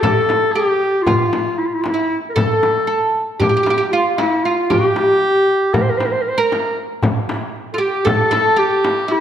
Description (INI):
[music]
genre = Turkish makam ensemble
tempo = 232 BPM (eighths)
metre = 9/8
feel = straight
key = unclear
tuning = A4 = 440 Hz
[part]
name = warm clarinet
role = melody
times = 0.0-9.2 s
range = E4-37c to C5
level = -16 LUFS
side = left 1 dB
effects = none
[part]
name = oud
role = second line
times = 0.0-9.2 s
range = E4-30c to Bb4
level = -20 LUFS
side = right 3 dB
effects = none
[part]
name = darbuka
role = percussion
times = 0.0-9.0 s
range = none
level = -24 LUFS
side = equal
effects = none
[part]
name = frame drum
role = percussion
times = 0.0-9.0 s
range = none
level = -23 LUFS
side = left 2 dB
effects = none
[sound]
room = wet scoring stage reverb, RT60 1.5 s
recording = none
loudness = -14 LUFS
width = side -9 dB against mid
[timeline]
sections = 0.0-9.2 A section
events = none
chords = none